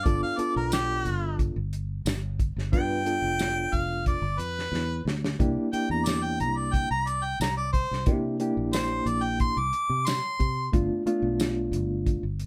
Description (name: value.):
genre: straight-eighth soul blues.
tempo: 90 BPM.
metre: 4/4.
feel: straight.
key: G mixolydian.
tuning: A4 = 438 Hz.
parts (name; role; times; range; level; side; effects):
clear harmonica; second line; 0.0-10.7 s; G4 to D6; -31 LUFS; equal; overdrive.
reed electric piano; accompaniment; 0.0-12.2 s; A3 to B4; -31 LUFS; equal; overdrive, fast tremolo.
fingered electric bass; bass; 0.1-12.5 s; F1 to C3; -33 LUFS; equal; none.
warm soul drum kit; drums; 0.1-12.5 s; hi-hat, kick drum, snare drum, tambourine; -30 LUFS; equal; none.
room: light reverb.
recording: band playing live in one room.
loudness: -27 LUFS.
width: mono.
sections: 0.0-12.5 A section.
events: harmonica solo 0.0-12.5; drum fill 4.7-5.4.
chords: 0.0 G9; 5.4 C9; 10.7 G9.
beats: | 0.06 0.73 1.39 2.06 | 2.73 3.40 4.06 4.73 | 5.40 6.06 6.73 7.40 | 8.06 8.73 9.40 10.06 | 10.73 11.39 12.06.